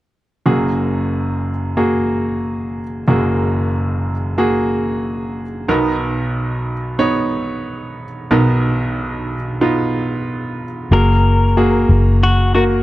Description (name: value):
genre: pop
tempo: 92 BPM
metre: 4/4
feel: straight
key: F# major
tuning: A4 = 438 Hz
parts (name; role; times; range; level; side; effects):
- bright upright piano; accompaniment; 0.5-12.8 s; F#1 to C#5; -16 LUFS; right 1 dB; none
- clean electric guitar; melody; 10.9-12.6 s; F#4 to A#4; -19 LUFS; left 3 dB; spring reverb
- vintage muted fingered electric bass; bass; 10.9-12.8 s; F#1; -13 LUFS; equal; none
room: light reverb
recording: dry, close 1970s-style studio recording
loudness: -15 LUFS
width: side -16 dB against mid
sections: 0.5-10.9 A section; 10.9-12.8 B section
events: none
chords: 0.5 F#add9; 5.7 Bmaj7; 10.9 F#add9